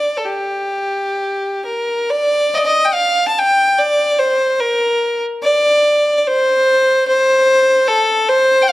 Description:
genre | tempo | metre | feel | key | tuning
celtic folk | 62-74 BPM | 4/4 | rubato | G minor | A4 = 443 Hz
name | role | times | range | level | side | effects
rich fiddle | solo | 0.0-8.7 s | G4 to A5 | -12 LUFS | equal | none
room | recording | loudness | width
moderate recital hall reverb, RT60 1.6 s | dark, warm production | -13 LUFS | side -16 dB against mid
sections
0.0-2.1 A section; 2.1-8.7 B section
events
none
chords
none

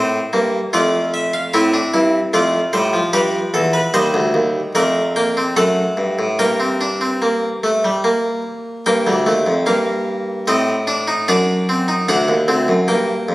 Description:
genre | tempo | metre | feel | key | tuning
classical, baroque-style 4-part fugue for harpsichord | 74 BPM | 3/4 | straight | G minor from 3.9 s | A4 = 436 Hz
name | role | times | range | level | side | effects
harpsichord | solo | 0.0-13.3 s | D2 to G5 | -15 LUFS | equal | none
room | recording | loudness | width
wet recital hall reverb, RT60 1.6 s | recorded on a phone in the room, club reverb | -15 LUFS | side -18 dB against mid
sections
0.0-8.9 A section; 8.9-13.3 B section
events
none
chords
0.0 C5; 0.7 F; 1.5 Dm7; 3.1 G7; 3.9 Cm; 5.6 F#m; 6.4 Gm; 10.5 Adim; 11.3 D7/F#

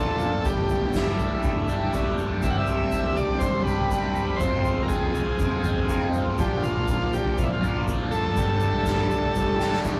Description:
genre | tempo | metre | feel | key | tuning
psychedelic rock | 121 BPM | 4/4 | straight | unclear | A4 = 442 Hz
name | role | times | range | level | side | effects
combo organ | melody | 0.0-9.8 s | E4 to F#5 | -31 LUFS | equal | none
hand-pumped harmonium | sustained chords | 0.0-10.0 s | Bb3 to C6 | -37 LUFS | equal | none
overdriven electric guitar | riff | 0.0-10.0 s | Bb2 to G4 | -31 LUFS | equal | phaser
fuzz picked electric bass | bass | 0.0-10.0 s | G1 to F2 | -34 LUFS | equal | overdrive
soft-mallet drum kit | drums | 0.2-10.0 s | kick drum, snare drum, toms | -28 LUFS | equal | none
tube shaker | percussion | 0.2-10.0 s | none | -51 LUFS | equal | none
room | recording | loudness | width
moderate studio reverb, RT60 0.5 s | rough rehearsal-room recording, warm saturation | -24 LUFS | mono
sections
0.0-10.0 A section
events
drum fill 9.4-10.0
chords
0.4 Gsus2; 2.4 Csus2; 4.4 Fm; 6.4 Bb; 8.4 Gsus2

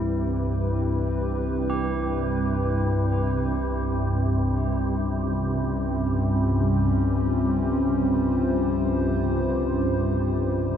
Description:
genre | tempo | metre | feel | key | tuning
dark ambient drone | free time | none | none | unclear | A4 = 440 Hz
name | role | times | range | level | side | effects
dark analog pad | sustained chords | 0.0-10.8 s | C4 to C5 | -26 LUFS | equal | chorus
tubular bells | arpeggios | 0.0-7.4 s | C4 to G4 | -39 LUFS | right 3 dB | diffuse ambient delay
organ-like drone | drone | 0.0-10.8 s | C2 to G2 | -24 LUFS | equal | ensemble chorus, built-in reverb
room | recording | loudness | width
wet cathedral reverb, RT60 6.5 s | none | -22 LUFS | side -8 dB against mid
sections
0.0-10.8 A section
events
fade-in on tubular bells 0.0-10.8; filter sweep on synth drone 0.0-10.8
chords
0.0 C; 3.6 Db/C

